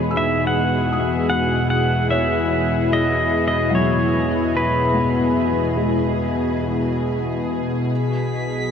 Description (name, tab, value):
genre	ambient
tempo	72 BPM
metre	4/4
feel	straight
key	unclear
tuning	A4 = 441 Hz
part	warm analog pad	sustained chords	0.0-8.7 s	B2 to G#4	-20 LUFS	left 1 dB	chorus
part	felt-muted upright piano	arpeggios	0.0-8.7 s	F#3 to E6	-27 LUFS	left 1 dB	tape echo
part	warm sub bass	bass	0.0-8.7 s	B1 to E2	-32 LUFS	equal	none
part	bowed-like drone	drone	0.0-8.7 s	B2 to G#4	-27 LUFS	left 2 dB	built-in reverb
part	pedal steel guitar	melody	0.2-7.0 s	B4 to F#5	-23 LUFS	equal	tape echo
part	drifting glass-harmonics texture	texture	8.1-8.7 s	B6	-31 LUFS	right 2 dB	chorus, built-in reverb
room	wet huge ambient reverb, RT60 8.4 s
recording	cassette tape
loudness	-17 LUFS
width	side -7 dB against mid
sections	0.0-8.7 A section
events	fade-in on sub bass 0.0-8.7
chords	0.0 Emaj7; 7.9 B5